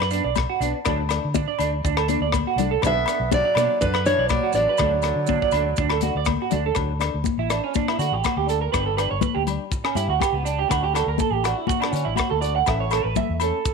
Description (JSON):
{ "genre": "highlife guitar band", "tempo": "122 BPM", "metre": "4/4", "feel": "swing 54% on 16ths", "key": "D major", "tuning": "A4 = 441 Hz", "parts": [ { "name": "electric guitar through a small old amp", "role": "arpeggios", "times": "0.0-13.7 s", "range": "B3 to F#5", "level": "-25 LUFS", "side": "right 13 dB", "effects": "analog chorus, slapback echo" }, { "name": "fingered electric bass", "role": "bass", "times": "0.0-13.5 s", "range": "G1 to D3", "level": "-26 LUFS", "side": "equal", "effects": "none" }, { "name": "tight funk drum kit", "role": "drums", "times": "0.0-13.7 s", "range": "hi-hat, kick drum, rim click", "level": "-28 LUFS", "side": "left 2 dB", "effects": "none" }, { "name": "agogo bells", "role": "percussion", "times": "0.0-13.5 s", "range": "none", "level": "-30 LUFS", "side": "left 16 dB", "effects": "none" }, { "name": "flamenco guitar", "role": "accompaniment", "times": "0.1-13.6 s", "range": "E3 to A4", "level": "-32 LUFS", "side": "left 13 dB", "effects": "none" }, { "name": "maracas", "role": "percussion", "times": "0.1-13.7 s", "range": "none", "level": "-38 LUFS", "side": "right 18 dB", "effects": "none" }, { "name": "congas", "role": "percussion", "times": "0.4-13.7 s", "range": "none", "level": "-28 LUFS", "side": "left 15 dB", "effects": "none" }, { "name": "fingerpicked steel-string acoustic guitar", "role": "melody", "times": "2.9-6.2 s", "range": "B4 to E5", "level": "-22 LUFS", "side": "right 1 dB", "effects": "none" }, { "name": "growling tenor saxophone", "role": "second line", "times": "2.9-6.2 s", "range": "D3 to B3", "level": "-31 LUFS", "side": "right 14 dB", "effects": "none" } ], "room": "light reverb, studio ambience", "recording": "1960s-style stereo with parts hard left and right", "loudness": "-20 LUFS", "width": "side -4 dB against mid", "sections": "0.0-6.8 A section; 6.8-13.7 B section", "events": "clean electric guitar solo 6.8-13.7", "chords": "0.0 Bm; 0.9 D; 2.8 Bm; 4.8 D; 8.7 G; 10.7 D; 12.7 A" }